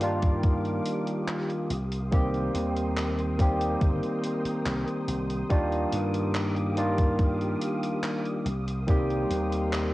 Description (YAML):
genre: vaporwave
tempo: 71 BPM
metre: 4/4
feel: straight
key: Eb major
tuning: A4 = 440 Hz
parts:
  - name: barky tine electric piano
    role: accompaniment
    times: 0.0-9.9 s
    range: Eb3 to G4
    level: -28 LUFS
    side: equal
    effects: overdrive, lush chorus, cassette tape, tape echo
  - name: soft string machine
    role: sustained chords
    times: 0.0-9.9 s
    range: G4 to Eb6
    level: -38 LUFS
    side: equal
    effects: ensemble chorus, cassette tape
  - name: vintage slap bass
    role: bass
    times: 0.0-9.9 s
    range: G1 to G2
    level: -31 LUFS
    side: equal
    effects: none
  - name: gated 80s digital drum machine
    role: drums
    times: 0.0-9.9 s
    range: handclaps, hi-hat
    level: -37 LUFS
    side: equal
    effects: gated reverb, studio reverb
  - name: electronic kick drum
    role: drums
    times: 0.2-9.1 s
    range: none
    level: -23 LUFS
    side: equal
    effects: studio reverb
room: light reverb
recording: home recording on cassette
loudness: -25 LUFS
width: side -17 dB against mid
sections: 0.0-9.9 A section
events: none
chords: 0.0 Ebmaj9; 1.7 Cm7; 5.5 Ebmaj9; 8.5 Cm7